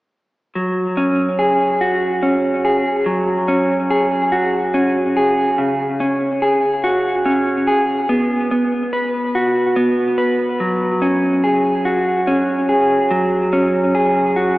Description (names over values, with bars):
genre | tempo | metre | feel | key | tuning
rock | 48 BPM (dotted quarters) | 6/8 | straight | unclear | A4 = 436 Hz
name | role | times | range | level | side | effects
electric guitar through a small old amp | arpeggios | 0.6-14.6 s | C#3 to B4 | -15 LUFS | equal | spring reverb, tape echo
room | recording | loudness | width
wet lush hall reverb, RT60 2.6 s | dreamy mix soaked in reverb, small speaker sound | -15 LUFS | side -18 dB against mid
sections
0.6-14.6 A section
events
none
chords
0.6 F#sus2; 5.6 C#sus4; 8.1 B5; 10.6 F#sus2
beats
| 0.55 1.81 | 3.07 4.32 | 5.58 6.84 | 8.09 9.35 | 10.60 11.85 | 13.11 14.36